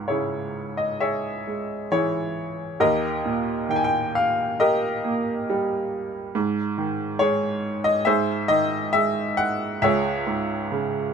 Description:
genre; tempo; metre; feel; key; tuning
classical, lyrical solo piano; 65-72 BPM; 4/4; rubato; C# minor; A4 = 440 Hz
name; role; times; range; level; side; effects
bright upright piano; solo; 0.0-11.1 s; C#2 to G#5; -21 LUFS; equal; none
room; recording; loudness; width
light reverb; minimal, uncompressed stereo recording, faint mains hum; -21 LUFS; side -6 dB against mid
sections
0.0-11.1 A section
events
none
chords
0.0 C#m; 2.8 D#; 6.4 G#5; 8.1 G#; 9.8 C#m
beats
0.09 1.02 1.92 | 2.81 3.70 4.59 5.50 | 6.35 7.21 8.07 8.93 | 9.81 10.71

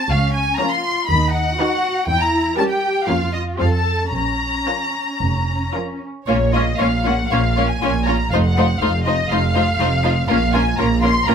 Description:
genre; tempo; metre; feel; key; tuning
quick classical-period movement for string orchestra; 110-124 BPM; 4/4; rubato; Bb minor; A4 = 440 Hz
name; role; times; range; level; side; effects
muted symphonic violin section; melody; 0.0-11.3 s; Db5 to C6; -21 LUFS; left 2 dB; none
muted symphonic cello section; bass; 0.0-11.3 s; F2 to A4; -23 LUFS; right 2 dB; none
muted studio double bass section; bass; 0.1-11.3 s; F1 to F2; -21 LUFS; right 1 dB; none
muted studio violin section; second line; 0.6-11.3 s; Db4 to Db5; -23 LUFS; left 2 dB; none
muted symphonic viola section; accompaniment; 0.6-11.3 s; D#3 to D#4; -23 LUFS; left 1 dB; none
room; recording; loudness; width
light reverb; none; -16 LUFS; side -7 dB against mid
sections
0.0-6.3 A section; 6.3-11.3 B section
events
none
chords
0.1 Bbm/Db; 1.1 B/D#; 2.1 Edim7; 3.1 Bbm/F; 3.6 F; 4.1 Bbm; 8.3 F7; 10.3 Bbm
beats
| 0.10 0.59 1.09 1.58 | 2.08 2.58 3.09 3.60 | 4.13 4.67 5.21 5.75 | 6.29 6.80 7.31 7.82 | 8.32 8.81 9.30 9.80 | 10.30 10.79 11.28

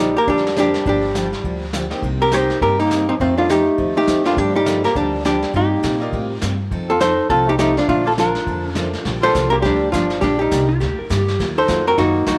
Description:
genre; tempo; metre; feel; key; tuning
country, western swing; 205 BPM; 4/4; swing 60% on 8ths; Bb major; A4 = 440 Hz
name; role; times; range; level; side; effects
archtop guitar, miked and amplified; melody; 0.0-12.4 s; C4 to C5; -19 LUFS; equal; none
clear clarinet; second line; 0.0-12.4 s; F3 to F4; -30 LUFS; equal; none
picked steel-string acoustic guitar; accompaniment; 0.0-12.4 s; C3 to A4; -30 LUFS; equal; none
upright bass; bass; 0.0-12.4 s; G1 to Bb2; -27 LUFS; equal; none
vintage brush drum kit; drums; 0.3-12.4 s; brushed snare drum, hi-hat, kick drum, snare drum; -30 LUFS; equal; none
tack piano; accompaniment; 0.6-11.8 s; Gb3 to D5; -33 LUFS; equal; none
clean lap steel guitar; second line; 10.7-11.5 s; F4 to Bb4; -27 LUFS; equal; none
room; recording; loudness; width
moderate echo chamber reverb, RT60 2.3 s; none; -18 LUFS; mono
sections
0.0-9.1 A section; 9.1-12.4 B section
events
none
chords
0.0 Bb69; 0.9 Gm7; 2.0 Cm7; 3.2 F7; 4.4 Gm11; 5.5 Cm11/G; 6.7 F7; 7.9 Bbmaj7; 9.1 Bb6; 10.2 Gm/Bb; 11.4 Ebmadd9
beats
0.27 0.57 | 0.86 1.15 1.45 1.74 | 2.03 2.32 2.62 2.91 | 3.20 3.50 3.79 4.08 | 4.37 4.67 4.96 5.25 | 5.54 5.84 6.13 6.42 | 6.71 7.01 7.30 7.59 | 7.88 8.18 8.47 8.76 | 9.05 9.35 9.64 9.93 | 10.22 10.52 10.81 11.10 | 11.39 11.69 11.98 12.27

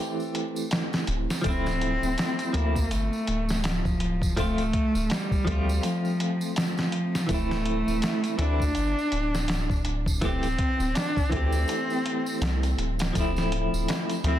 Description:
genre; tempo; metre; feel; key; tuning
trip hop; 82 BPM; 4/4; swing 58% on 16ths; D minor; A4 = 441 Hz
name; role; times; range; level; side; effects
clean electric guitar; accompaniment; 0.0-14.4 s; E3 to G4; -30 LUFS; equal; tremolo, low-pass filter, tape echo
tambourine; percussion; 0.2-14.2 s; none; -42 LUFS; right 4 dB; none
dusty soul sampler-style drum kit; drums; 0.3-14.4 s; hi-hat, kick drum, snare drum; -29 LUFS; equal; none
round analog bass; bass; 1.1-14.4 s; D1 to D2; -28 LUFS; equal; none
dark cello; melody; 1.5-14.4 s; F3 to D4; -28 LUFS; equal; tape echo
room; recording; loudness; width
light reverb; dense, heavily limited modern master, vinyl crackle; -24 LUFS; side -12 dB against mid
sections
0.0-13.1 A section; 13.1-14.4 B section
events
kick drops out 11.7-13.1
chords
0.0 Am; 1.4 Dm9; 7.3 Am/D; 13.1 Dm9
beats
0.71 | 1.44 2.17 2.90 3.64 | 4.37 5.10 5.83 6.56 | 7.29 8.03 8.76 9.49 | 10.22 10.95 11.68 12.42 | 13.15 13.88

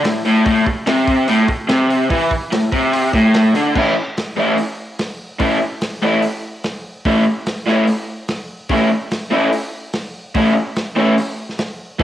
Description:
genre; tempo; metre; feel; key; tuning
garage rock duo or trio; 146 BPM; 4/4; straight; unclear; A4 = 440 Hz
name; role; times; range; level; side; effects
raw garage guitar; riff; 0.0-12.0 s; A2 to E4; -14 LUFS; equal; overdrive, spring reverb, cassette tape
crunchy breakbeat drum kit; drums; 0.0-12.0 s; crash cymbal, hi-hat, kick drum, snare drum; -24 LUFS; equal; cassette tape
room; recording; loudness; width
light reverb; home recording on cassette; -15 LUFS; side -12 dB against mid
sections
0.0-3.8 A section; 3.8-12.0 B section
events
none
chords
0.0 A5; 3.8 A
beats
0.05 | 0.46 0.87 1.28 1.70 | 2.11 2.52 2.93 3.34 | 3.75 4.17 4.58 4.99 | 5.40 5.81 6.23 6.64 | 7.05 7.46 7.88 8.29 | 8.70 9.11 9.52 9.94 | 10.35 10.76 11.17 11.58 | 11.99

